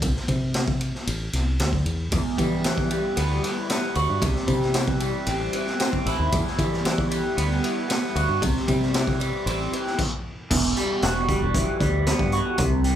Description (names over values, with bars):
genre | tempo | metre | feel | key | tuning
psychedelic rock | 114 BPM | 4/4 | straight | E minor | A4 = 439 Hz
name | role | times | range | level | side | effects
fingered electric bass | bass | 0.0-13.0 s | E1 to E3 | -26 LUFS | equal | none
raw garage drum kit | drums | 0.0-13.0 s | crash cymbal, hi-hat, kick drum, ride cymbal, snare drum | -26 LUFS | equal | none
electric guitar through a small old amp | riff | 2.1-13.0 s | E2 to F#4 | -25 LUFS | right 1 dB | phaser
tambourine | percussion | 2.1-9.9 s | none | -42 LUFS | left 7 dB | none
room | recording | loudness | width
light reverb | band playing live in one room | -21 LUFS | side -10 dB against mid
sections
0.0-10.5 A section; 10.5-13.0 B section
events
stop 10.0-10.5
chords
0.0 N.C.; 2.1 Emadd9; 4.2 C; 6.3 Emadd9; 8.4 C; 10.5 Emadd9